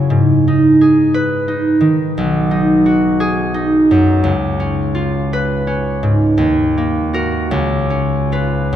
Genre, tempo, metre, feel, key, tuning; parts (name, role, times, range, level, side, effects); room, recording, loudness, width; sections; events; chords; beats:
classical, solo harp piece; 48-60 BPM (dotted quarters); 6/8; rubato; A4 = 440 Hz
concert harp; solo; 0.0-8.8 s; B1 to E5; -12 LUFS; equal
wet church reverb, RT60 3.3 s; -12 LUFS; side -10 dB against mid
0.0-8.8 A section
0.1 G#m; 2.2 G#m7/B; 4.3 C#7; 6.4 D#m; 7.5 C#7
| 0.12 1.15 | 2.18 3.22 | 4.26 5.32 | 6.38 7.51 | 8.72